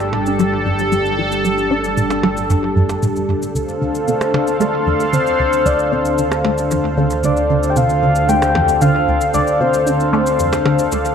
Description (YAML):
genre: ambient, sequencer-driven space music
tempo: 114 BPM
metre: 4/4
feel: straight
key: unclear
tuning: A4 = 440 Hz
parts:
  - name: sweeping resonant pad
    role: sustained chords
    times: 0.0-11.1 s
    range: G3 to F5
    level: -18 LUFS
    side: equal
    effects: chorus
  - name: fat analog bass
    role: bass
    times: 0.0-11.1 s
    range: G1 to D2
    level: -25 LUFS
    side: equal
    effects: none
  - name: percussion blips and cabasa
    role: percussion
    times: 0.0-11.1 s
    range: none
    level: -28 LUFS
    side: right 2 dB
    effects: tape echo
  - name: resonant blip pluck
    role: riff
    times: 0.1-11.1 s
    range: D2 to D4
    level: -20 LUFS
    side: right 1 dB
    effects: chorus, phaser, tape echo
  - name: soft octave-layered synth lead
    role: melody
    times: 4.1-11.1 s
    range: A4 to G5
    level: -17 LUFS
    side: left 2 dB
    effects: chorus, tape echo
room: wet plate reverb, RT60 2.5 s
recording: dreamy mix soaked in reverb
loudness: -14 LUFS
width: side -7 dB against mid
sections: 0.0-11.1 A section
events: fade-in on analog synth bass 0.0-11.1; filter sweep on synth arpeggio sound 0.0-11.1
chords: 0.0 G5; 3.6 Dm7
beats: 0.39 0.92 | 1.45 1.97 2.50 3.03 | 3.55 4.08 4.61 5.13 | 5.66 6.18 6.71 7.24 | 7.76 8.29 8.81 9.34 | 9.87 10.39 10.92